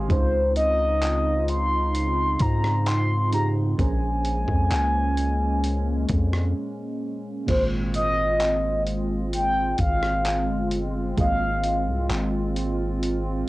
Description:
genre	contemporary R&B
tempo	65 BPM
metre	4/4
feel	straight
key	Ab major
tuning	A4 = 441 Hz
part	mellow FM electric piano	accompaniment	0.0-13.5 s	Ab2 to Eb6	-34 LUFS	right 4 dB	chorus
part	hollow soft pad	sustained chords	0.0-13.5 s	Db3 to F4	-29 LUFS	right 1 dB	chorus
part	long sustained 808-style bass	bass	0.0-13.4 s	G1 to Ab2	-25 LUFS	equal	tube saturation
part	mellow horn-like synth lead	melody	0.1-12.1 s	C5 to C6	-25 LUFS	equal	chorus, cassette tape
part	dusty soul sampler-style drum kit	drums	0.1-13.2 s	crash cymbal, handclaps, hi-hat, kick drum, rim click	-28 LUFS	equal	cassette tape
room	little or no reverb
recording	home recording on cassette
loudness	-21 LUFS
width	side -18 dB against mid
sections	0.0-7.5 A section; 7.5-13.5 A section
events	break 6.6-7.5; FM electric piano fill 13.0-13.5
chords	0.1 Dbmaj9; 3.8 Bbm9; 7.5 Ab69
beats	| 0.10 1.02 1.94 2.87 | 3.79 4.71 5.64 6.56 | 7.48 8.40 9.33 10.25 | 11.17 12.10 13.02

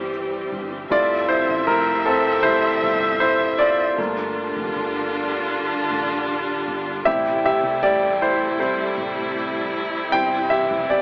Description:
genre	pop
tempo	78 BPM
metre	4/4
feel	straight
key	F major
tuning	A4 = 440 Hz
part	warm concert grand piano	accompaniment	0.0-11.0 s	G3 to G5	-22 LUFS	equal	none
part	warm studio string section	sustained chords	0.0-11.0 s	C3 to E5	-26 LUFS	equal	none
part	woody fretless electric bass	bass	0.0-11.0 s	F1 to C2	-40 LUFS	equal	lush chorus
room	moderate plate reverb, RT60 3.5 s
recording	AM radio sound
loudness	-21 LUFS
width	mono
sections	0.0-11.0 A section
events	grand piano solo 0.0-11.0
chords	0.0 C; 0.9 Fmaj7; 4.0 Gm7; 7.1 Am7; 10.1 Fmaj7(no3)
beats	0.14 | 0.91 1.68 2.44 3.21 | 3.98 4.75 5.52 6.29 | 7.06 7.83 8.60 9.37 | 10.14 10.91

